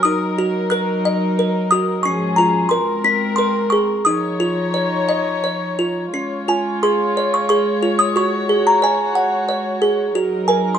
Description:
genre	children's music, lullaby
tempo	90 BPM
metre	3/4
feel	rubato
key	Db major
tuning	A4 = 440 Hz
part	music box	melody	0.0-10.8 s	C4 to Gb6	-17 LUFS	right 1 dB	none
part	dark chamber string section	sustained chords	0.0-10.8 s	Ab2 to Db5	-21 LUFS	left 2 dB	none
room	moderate stone room reverb, RT60 1.1 s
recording	band playing live in one room, nothing above 10.8 kHz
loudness	-16 LUFS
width	side -8 dB against mid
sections	0.0-6.1 A section; 6.1-10.8 B section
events	none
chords	0.0 Ebm; 2.0 Db/Ab; 2.7 Abadd9; 4.1 Dbadd9; 6.1 Db; 8.2 Gbsus2; 10.2 Ebm/Gb

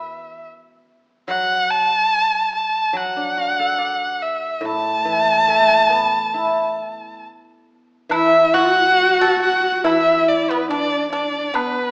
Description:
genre	chinese traditional, Chinese chamber ensemble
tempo	71 BPM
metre	4/4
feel	rubato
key	unclear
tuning	A4 = 439 Hz
part	rich erhu	melody	0.0-11.9 s	B4 to A5	-17 LUFS	equal	none
part	guzheng	accompaniment	0.0-11.9 s	A2 to D5	-22 LUFS	equal	none
part	pipa	second line	8.1-11.9 s	B3 to A4	-24 LUFS	right 1 dB	none
part	warm horsehead fiddle	second line	8.1-11.9 s	B3 to F#4	-21 LUFS	equal	none
part	woodblock	percussion	8.1-11.7 s	none	-26 LUFS	equal	none
room	wet recital hall reverb, RT60 1.4 s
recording	small speaker sound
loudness	-15 LUFS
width	side -29 dB against mid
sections	0.0-8.1 A section; 8.1-11.9 B section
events	none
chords	none

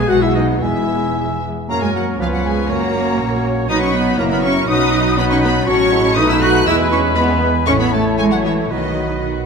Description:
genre	quick classical-period movement for symphony orchestra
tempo	110-123 BPM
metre	2/4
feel	rubato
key	F# major, E major from 5.7 s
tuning	A4 = 439 Hz
part	clear clarinet	second line	0.0-9.5 s	C#4 to G#4	-26 LUFS	left 2 dB	none
part	clear oboe	second line	0.0-9.5 s	A#4 to F#5	-28 LUFS	right 1 dB	none
part	mellow concert flute	second line	0.0-9.2 s	D#5 to F#6	-27 LUFS	left 2 dB	none
part	rich studio violin section	second line	0.0-9.5 s	C#4 to A5	-28 LUFS	left 2 dB	none
part	warm studio viola section	accompaniment	0.0-9.2 s	D#3 to F#4	-22 LUFS	right 1 dB	none
part	rich studio cello section	bass	0.0-9.2 s	E2 to F#4	-22 LUFS	right 3 dB	none
part	rich studio double bass section	bass	0.0-9.5 s	E1 to F#2	-22 LUFS	right 4 dB	none
part	rich studio violin section	melody	0.1-9.2 s	D#5 to F#6	-23 LUFS	left 3 dB	none
part	mellow French horn section	sustained chords	0.1-9.5 s	F#3 to F#4	-21 LUFS	left 4 dB	none
part	warm bassoon	accompaniment	1.7-9.5 s	E#3 to A3	-24 LUFS	right 1 dB	none
part	mellow trumpet section	stabs	1.7-9.5 s	A#4 to C#5	-25 LUFS	left 2 dB	none
room	wet concert hall reverb, RT60 2.1 s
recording	none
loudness	-14 LUFS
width	side -5 dB against mid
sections	0.0-1.7 A section; 1.7-9.5 B section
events	none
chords	0.0 E/B; 0.6 E; 1.7 F#; 2.2 C#7; 2.7 F#; 3.7 B; 4.2 F#7; 4.7 B; 5.7 F#m/A; 6.2 B7; 6.7 E; 7.7 A; 8.7 B

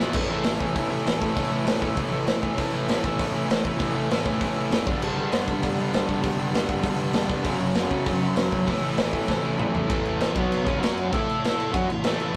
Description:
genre	punk rock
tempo	197 BPM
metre	4/4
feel	straight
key	A mixolydian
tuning	A4 = 440 Hz
part	crunchy overdriven guitar	riff	0.0-12.4 s	E2 to A4	-34 LUFS	equal	none
part	distorted electric guitar	riff	0.0-12.4 s	E2 to A4	-30 LUFS	equal	distortion
part	distorted electric guitar	riff	0.0-12.3 s	F#2 to A4	-34 LUFS	equal	overdrive
part	fuzz picked electric bass	bass	0.0-12.3 s	E1 to A2	-37 LUFS	equal	none
part	raw garage drum kit	drums	0.1-12.3 s	crash cymbal, hi-hat, kick drum, snare drum, toms	-29 LUFS	equal	none
room	light reverb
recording	rough rehearsal-room recording, tube saturation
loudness	-25 LUFS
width	mono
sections	0.1-9.9 A section; 9.9-12.4 B section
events	drum fill 9.3-9.9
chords	0.1 A; 4.9 G; 7.5 F#m; 8.7 A; 9.9 A5; 10.3 B5; 10.7 C#5; 10.8 F#5; 11.1 A

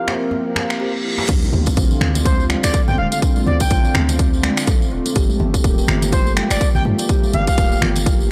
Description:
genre	afro house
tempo	124 BPM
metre	4/4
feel	swing 58% on 16ths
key	D minor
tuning	A4 = 440 Hz
part	expressive synth lead	melody	0.0-7.8 s	C5 to G5	-27 LUFS	equal	chorus, tape echo
part	warm analog pad	sustained chords	0.0-8.3 s	D3 to Bb4	-28 LUFS	equal	chorus, sidechain pumping
part	kalimba	arpeggios	0.0-8.2 s	G3 to G5	-28 LUFS	equal	sidechain pumping, tape echo
part	mellow synth brass	stabs	0.0-0.9 s	F4 to F5	-31 LUFS	equal	chorus, sidechain pumping, tape echo
part	house drum kit	drums	0.1-8.2 s	crash cymbal, finger snaps, hi-hat	-26 LUFS	equal	overdrive
part	djembe	percussion	0.1-1.3 s	none	-30 LUFS	equal	none
part	reverse cymbal and impact	sound effects	0.7-3.2 s	none	-30 LUFS	equal	none
part	warm 808-style bass	bass	1.3-8.3 s	D1 to G2	-24 LUFS	equal	tube saturation, sidechain pumping
part	electronic kick drum	drums	1.3-8.2 s	none	-20 LUFS	equal	overdrive
part	tambourine	percussion	1.3-8.3 s	none	-33 LUFS	equal	none
part	congas	percussion	1.4-8.3 s	none	-27 LUFS	equal	none
room	light reverb, digital ambience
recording	dry, gritty hardware recording, transformer saturation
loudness	-17 LUFS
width	mono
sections	0.0-1.3 A section; 1.3-8.3 B section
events	filter sweep 0.0-1.3; reverse cymbal 0.7-1.3; drop 1.3-8.3; impact 1.3-3.2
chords	0.0 C7sus4; 1.3 Dm7; 5.2 Gm9

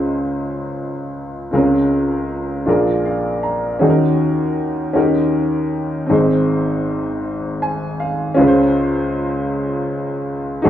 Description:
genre	gospel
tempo	53 BPM (dotted quarters)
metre	6/8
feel	straight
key	Db major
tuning	A4 = 441 Hz
part	warm upright piano	solo	0.0-10.7 s	Ab1 to Bb5	-16 LUFS	equal	none
room	wet large studio reverb, RT60 1.1 s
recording	band playing live in one room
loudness	-16 LUFS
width	side -11 dB against mid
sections	0.0-8.4 A section; 8.4-10.7 B section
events	upright piano fill 2.7-3.8, 7.2-8.4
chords	0.0 Dbmaj7; 1.5 Bbm7/Db; 2.7 Bb7; 3.8 Ebm7; 5.0 Eb7; 6.1 Ab; 8.4 Dbmaj7

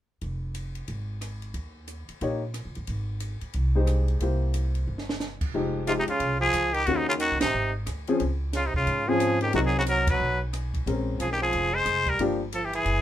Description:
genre	jazz, small-group swing and bop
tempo	180 BPM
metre	4/4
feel	swing 63% on 8ths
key	F minor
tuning	A4 = 439 Hz
part	upright bass	bass	0.2-13.0 s	F1 to Ab2	-29 LUFS	right 1 dB	none
part	compact cocktail drum kit	drums	0.2-13.0 s	crash cymbal, hi-hat, kick drum, ride cymbal, rim click, snare drum	-35 LUFS	right 1 dB	none
part	warm upright piano	accompaniment	2.2-12.4 s	Eb3 to Db5	-28 LUFS	left 3 dB	none
part	trumpet with straight mute	melody	5.9-13.0 s	Eb4 to C5	-25 LUFS	left 2 dB	none
part	bright trombone	second line	5.9-13.0 s	C3 to Ab3	-30 LUFS	right 5 dB	none
room	light reverb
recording	minimal, uncompressed stereo recording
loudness	-24 LUFS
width	side -12 dB against mid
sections	0.2-5.5 A section; 5.5-13.0 B section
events	drum fill 4.9-5.2; band accent 7.4, 10.0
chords	0.2 Fm; 1.5 Eb7; 2.9 Abmaj7; 4.2 C7; 5.5 Fm9; 6.9 Ebm7; 7.5 Ab; 8.2 Dbmaj7; 9.5 Cm7b5; 10.2 B5; 10.9 Bbm9; 12.2 Gm7

